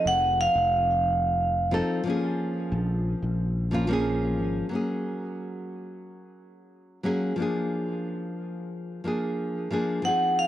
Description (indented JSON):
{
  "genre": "sunset chillout",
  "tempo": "90 BPM",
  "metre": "4/4",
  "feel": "straight",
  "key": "unclear",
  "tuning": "A4 = 440 Hz",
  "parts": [
    { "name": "vibraphone with medium hard mallets", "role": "melody", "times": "0.0-1.7, 10.1-10.5 s", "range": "F5 to Gb5", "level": "-23 LUFS", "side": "right 1 dB", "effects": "tape echo" },
    { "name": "nylon-string guitar", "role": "accompaniment", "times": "0.0-10.5 s", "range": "F3 to A4", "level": "-28 LUFS", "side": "equal", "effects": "auto-pan, tape echo" },
    { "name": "sustaining fretless electric bass", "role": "bass", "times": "0.1-4.6 s", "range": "F1 to Bb1", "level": "-28 LUFS", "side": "equal", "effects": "ensemble chorus" }
  ],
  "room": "light reverb, studio ambience",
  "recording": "dry, gritty hardware recording, cassette tape",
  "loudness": "-24 LUFS",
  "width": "side -12 dB against mid",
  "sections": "0.0-4.7 A section; 4.7-10.5 B section",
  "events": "none",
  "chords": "0.0 F7; 2.1 Bbm7; 4.7 Ab9sus4; 7.4 Bb7"
}